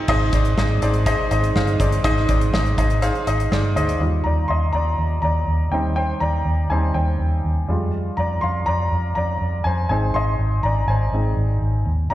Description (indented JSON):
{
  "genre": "piano-driven pop",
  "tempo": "122 BPM",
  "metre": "4/4",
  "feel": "straight",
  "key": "unclear",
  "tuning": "A4 = 445 Hz",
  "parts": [
    { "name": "clear upright piano", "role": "accompaniment", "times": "0.0-12.1 s", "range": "Ab2 to C6", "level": "-22 LUFS", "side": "equal", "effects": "slapback echo" },
    { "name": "warm studio string section", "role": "sustained chords", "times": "0.0-4.0 s", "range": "Ab3 to Eb4", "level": "-33 LUFS", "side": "right 4 dB", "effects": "none" },
    { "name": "vintage muted fingered electric bass", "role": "bass", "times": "0.1-12.1 s", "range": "G1 to F2", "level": "-20 LUFS", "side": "equal", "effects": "none" },
    { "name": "modern studio drum kit", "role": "drums", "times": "0.1-4.0 s", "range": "crash cymbal, hi-hat, kick drum, snare drum", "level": "-24 LUFS", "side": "equal", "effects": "none" }
  ],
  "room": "light reverb, small room ambience",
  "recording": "live gig heard through the venue's PA, recital hall reverb",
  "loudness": "-18 LUFS",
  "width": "side -14 dB against mid",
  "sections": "0.1-4.0 A section; 4.0-12.1 B section",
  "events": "upright piano solo 4.0-12.1",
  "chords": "0.1 Ab; 4.0 Ebadd9; 5.7 Cm/Eb; 7.7 Fmadd9; 9.9 Ab"
}